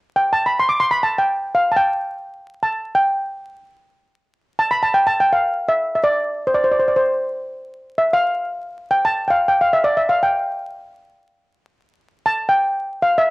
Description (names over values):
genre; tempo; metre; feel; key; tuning
Turkish makam ensemble; free time; none; none; unclear; A4 = 440 Hz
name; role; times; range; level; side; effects
steel pan; solo; 0.2-13.3 s; C5 to D6; -16 LUFS; equal; cassette tape
room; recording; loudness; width
light reverb; home recording on cassette, vinyl crackle; -16 LUFS; side -22 dB against mid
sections
0.0-7.6 A section; 7.6-13.3 A section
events
none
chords
none